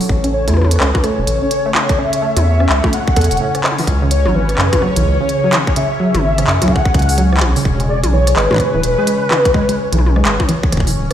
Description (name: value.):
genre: IDM.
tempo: 127 BPM.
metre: 4/4.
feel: swing 62% on 16ths.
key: unclear.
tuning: A4 = 440 Hz.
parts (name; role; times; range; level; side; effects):
glassy FM pad; sustained chords; 0.0-11.1 s; C#3 to A4; -24 LUFS; equal; ensemble chorus, built-in reverb.
glitchy drum kit; drums; 0.0-11.1 s; handclaps, hi-hat, rim click, toms; -20 LUFS; equal; none.
bubbling stepped-filter texture; texture; 0.0-11.1 s; C#4 to C#5; -27 LUFS; left 3 dB; chorus, built-in reverb.
round analog bass; bass; 0.1-11.1 s; D1 to F#2; -15 LUFS; equal; none.
electronic kick drum; drums; 0.1-10.9 s; none; -16 LUFS; equal; none.
warbly dusty pluck; arpeggios; 0.2-11.1 s; A2 to A4; -20 LUFS; right 1 dB; chorus, digital delay.
warbly nostalgic lead; melody; 0.3-10.9 s; B4 to F#5; -18 LUFS; left 1 dB; ensemble chorus, ping-pong delay.
room: light reverb.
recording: played on a big sound system in a bare room, stone room reverb.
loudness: -12 LUFS.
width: side -10 dB against mid.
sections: 0.0-11.1 A section.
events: none.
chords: 0.1 A; 3.9 C#m; 7.7 E.